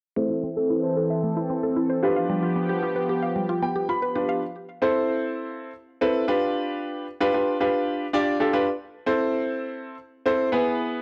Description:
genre	pop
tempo	113 BPM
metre	4/4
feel	straight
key	A minor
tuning	A4 = 440 Hz
part	clear concert grand piano	accompaniment	0.2-11.0 s	B3 to B5	-26 LUFS	equal	low-pass filter, cassette tape
part	warm analog pad	sustained chords	0.2-4.4 s	E3 to A4	-29 LUFS	equal	chorus, phaser, low-pass filter, cassette tape
part	mallet-like synth pluck	arpeggios	0.2-4.4 s	G3 to F5	-30 LUFS	equal	chorus, low-pass filter, cassette tape, tape echo
room	moderate studio reverb, RT60 0.6 s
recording	home recording on cassette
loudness	-25 LUFS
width	mono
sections	0.2-4.4 A section; 4.4-11.0 B section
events	filter sweep 0.2-4.4; grand piano fill 3.4-4.4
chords	0.2 Am; 2.0 G7; 4.4 Am; 6.3 G7; 8.7 Am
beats	| 0.17 0.70 1.23 1.76 | 2.30 2.83 3.36 3.89 | 4.42 4.95 5.48 6.01 | 6.54 7.07 7.61 8.14 | 8.67 9.20 9.73 10.26 | 10.79

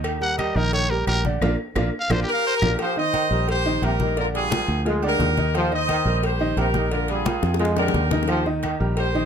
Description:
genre	latin, salsa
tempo	175 BPM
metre	4/4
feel	straight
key	Eb major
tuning	A4 = 440 Hz
part	bright upright piano	accompaniment	0.0-9.3 s	D3 to Eb5	-27 LUFS	right 2 dB	none
part	fingered electric bass	bass	0.0-9.3 s	Bb1 to F2	-24 LUFS	equal	none
part	agogo bells and timbales	percussion	0.0-9.1 s	none	-33 LUFS	right 6 dB	none
part	claves	percussion	0.0-2.7, 8.3-8.8 s	none	-36 LUFS	left 3 dB	none
part	congas	percussion	0.0-9.3 s	none	-29 LUFS	left 2 dB	none
part	cowbell and bongos	percussion	0.0-9.1 s	none	-32 LUFS	left 5 dB	none
part	growling trumpet	melody	0.2-2.7 s	G4 to Gb5	-24 LUFS	equal	none
part	brilliant horn section	melody	2.3-9.3 s	F4 to Eb5	-24 LUFS	equal	none
part	clear trombone section	second line	2.8-9.0 s	C3 to Ab3	-27 LUFS	equal	none
room	light reverb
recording	close, detailed microphones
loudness	-19 LUFS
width	side -7 dB against mid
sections	0.0-2.8 A section; 2.8-9.3 B section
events	trumpet solo 0.0-2.8; band accent 1.4-2.8; drum fill 1.8-2.8, 7.4-8.3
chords	0.0 Eb; 1.4 Bb; 2.8 Eb6; 4.2 Bb7; 5.5 Eb6; 6.9 Bb7; 8.3 Eb6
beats	| 0.05 0.39 0.74 1.08 | 1.42 1.77 2.11 2.45 | 2.80 3.14 3.48 3.83 | 4.17 4.51 4.86 5.20 | 5.54 5.89 6.23 6.58 | 6.92 7.26 7.61 7.95 | 8.29 8.63 8.98

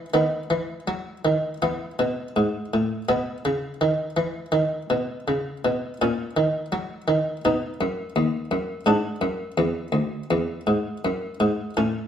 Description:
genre	classical, baroque-style suite movement for harpsichord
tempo	82 BPM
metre	4/4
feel	rubato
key	unclear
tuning	A4 = 442 Hz
part	buff-stop harpsichord	solo	0.0-12.1 s	D2 to D#4	-22 LUFS	equal	none
room	wet stone room reverb, RT60 1.1 s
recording	heard from further back in the room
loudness	-22 LUFS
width	side -9 dB against mid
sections	0.0-12.1 A section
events	none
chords	0.1 B/D#; 1.6 E; 3.1 B; 6.0 F#/A#; 7.4 B; 8.9 E7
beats	| 0.13 0.86 1.60 2.33 | 3.07 3.80 4.52 5.26 | 6.00 6.72 7.44 8.15 | 8.87 9.59 10.32 11.05 | 11.78

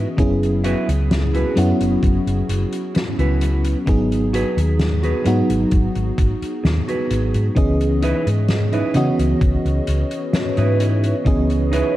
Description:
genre	vaporwave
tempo	65 BPM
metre	4/4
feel	straight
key	C# minor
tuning	A4 = 441 Hz
part	FM electric piano with soft pad layer	accompaniment	0.0-12.0 s	E3 to D#5	-21 LUFS	equal	tremolo, wide subtle chorus, analog delay
part	mellow electric guitar	riff	0.0-12.0 s	D#4 to B4	-25 LUFS	right 2 dB	wide subtle chorus, analog delay
part	hollow-body short-scale fingered electric bass	bass	0.0-11.8 s	F#1 to C#3	-20 LUFS	equal	tube saturation
part	electronic kick drum	drums	0.2-11.4 s	none	-18 LUFS	equal	none
part	soft-mallet drum kit	drums	0.2-11.9 s	hi-hat, snare drum	-25 LUFS	left 1 dB	none
part	warbly tape-like pad	sustained chords	8.0-12.0 s	B4 to C#6	-29 LUFS	equal	chorus, built-in reverb
room	light reverb, studio reverb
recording	dark, warm production, cassette tape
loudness	-16 LUFS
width	side -15 dB against mid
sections	0.0-12.0 A section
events	none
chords	0.2 F#7sus4; 3.9 G#m7; 7.6 C#m9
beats	| 0.18 1.11 2.03 2.95 | 3.88 4.80 5.72 6.64 | 7.57 8.49 9.41 10.34 | 11.26

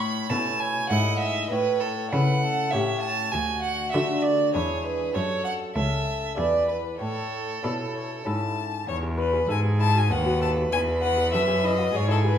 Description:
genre	classical, baroque-style sonata movement with continuo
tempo	98 BPM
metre	3/4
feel	straight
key	A major, E major from 8.9 s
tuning	A4 = 440 Hz
part	clear violin	melody	0.0-12.4 s	F#4 to A5	-30 LUFS	left 5 dB	none
part	clear violin	second line	0.0-12.4 s	G#4 to B5	-26 LUFS	right 4 dB	none
part	lute	accompaniment	0.0-12.4 s	D2 to B4	-30 LUFS	left 2 dB	none
part	clear cello	bass	0.0-12.4 s	C#2 to D3	-27 LUFS	equal	none
room	wet recital hall reverb, RT60 1.4 s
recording	recorded in a church or concert hall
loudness	-22 LUFS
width	side -9 dB against mid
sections	0.0-8.9 A section; 8.9-12.4 A section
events	none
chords	0.0 A; 2.7 A7; 3.3 D; 4.5 E7; 5.2 F#m; 6.4 E7; 7.0 A; 8.9 E; 10.1 B7/D#; 10.7 E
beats	0.30 0.91 | 1.51 2.13 2.73 | 3.33 3.94 4.55 | 5.16 5.76 6.38 | 7.00 7.63 8.26 | 8.88 9.50 10.11 | 10.72 11.33 11.94

